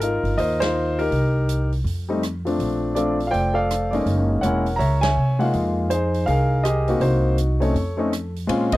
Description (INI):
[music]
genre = jazz piano trio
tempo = 163 BPM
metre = 4/4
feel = swing 63% on 8ths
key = unclear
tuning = A4 = 441 Hz
[part]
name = warm concert grand piano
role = melody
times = 0.0-8.8 s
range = F3 to Bb5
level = -21 LUFS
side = left 1 dB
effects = none
[part]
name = upright bass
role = bass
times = 0.0-8.8 s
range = Fb1 to C3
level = -22 LUFS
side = equal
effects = none
[part]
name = swinging big-band drum kit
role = drums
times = 0.0-8.8 s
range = hi-hat, kick drum, ride cymbal, rim click, snare drum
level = -34 LUFS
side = right 2 dB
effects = none
[sound]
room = little or no reverb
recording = dry, close 1970s-style studio recording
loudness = -19 LUFS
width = side -17 dB against mid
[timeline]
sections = 0.0-8.5 A section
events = band accent 0.6, 5.0; break 8.1-8.5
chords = 0.0 Ab69; 1.1 Cm7; 1.9 F; 2.6 Bbmaj9; 4.1 Gb9; 5.5 Fm11; 7.0 Cm7b5; 7.8 Faug